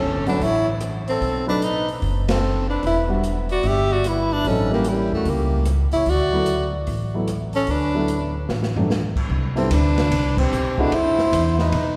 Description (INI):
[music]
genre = jazz, small-group swing and bop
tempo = 148 BPM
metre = 4/4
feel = swing 65% on 8ths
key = D major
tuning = A4 = 440 Hz
[part]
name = warm tenor saxophone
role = melody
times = 0.0-12.0 s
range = G3 to G4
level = -25 LUFS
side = equal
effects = none
[part]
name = breathy trumpet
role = second line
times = 0.0-12.0 s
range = E4 to E5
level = -31 LUFS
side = equal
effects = none
[part]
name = upright bass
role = bass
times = 0.0-12.0 s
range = E1 to F#2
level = -26 LUFS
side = equal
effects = none
[part]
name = dark upright piano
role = accompaniment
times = 0.3-10.9 s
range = F#3 to F#4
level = -30 LUFS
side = equal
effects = none
[part]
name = open jazz drum kit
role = drums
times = 0.3-11.8 s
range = crash cymbal, hi-hat, kick drum, ride cymbal, rim click, snare drum, toms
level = -31 LUFS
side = equal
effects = none
[sound]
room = wet church reverb, RT60 3.5 s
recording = recorded in a church or concert hall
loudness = -21 LUFS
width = mono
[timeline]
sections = 0.0-9.3 A section; 9.3-12.0 B section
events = band accent 2.2, 10.3; drum fill 8.5-8.9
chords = 0.0 F#m7; 1.2 B7(no3); 2.8 Em9; 4.4 A7b9; 6.1 D6; 9.3 Cmaj7; 10.9 C(#11)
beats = 0.00 0.41 0.81 | 1.22 1.62 2.02 2.43 | 2.83 3.23 3.64 4.04 | 4.45 4.85 5.26 5.66 | 6.07 6.47 6.88 7.28 | 7.68 8.09 8.49 8.90 | 9.30 9.71 10.11 10.51 | 10.92 11.32 11.72